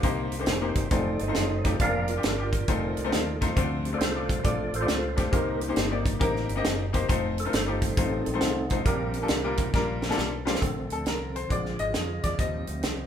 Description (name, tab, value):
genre	uptempo gospel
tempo	136 BPM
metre	4/4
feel	swing 65% on 8ths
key	Bb major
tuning	A4 = 441 Hz
part	bright grand piano	accompaniment	0.0-13.1 s	Bb2 to Eb5	-30 LUFS	left 4 dB	none
part	percussive tonewheel organ	sustained chords	0.0-13.1 s	D3 to F5	-32 LUFS	right 2 dB	fast rotary speaker
part	fingered electric bass with an envelope filter	bass	0.0-13.1 s	F1 to F2	-32 LUFS	right 1 dB	none
part	tight funk drum kit	drums	0.0-13.0 s	hi-hat, kick drum, snare drum	-28 LUFS	right 1 dB	none
room	moderate large studio reverb, RT60 1.2 s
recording	band playing live in one room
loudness	-24 LUFS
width	side -9 dB against mid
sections	0.0-10.6 A section; 10.6-13.1 B section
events	tonewheel organ solo 0.0-10.6; drum fill 9.7-10.6; grand piano solo 10.6-13.1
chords	0.0 Cm7; 0.9 F7; 1.8 Bb/F; 2.7 F7; 3.6 Dm7; 5.3 Cm7; 7.1 F7; 8.9 Bb6; 10.6 Bbmaj9; 11.5 Bb7; 12.4 Eb6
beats	| 0.03 0.47 0.92 1.36 | 1.80 2.24 2.68 3.12 | 3.56 4.01 4.45 4.89 | 5.33 5.77 6.21 6.65 | 7.09 7.53 7.97 8.41 | 8.86 9.30 9.74 10.18 | 10.62 11.06 11.51 11.95 | 12.39 12.83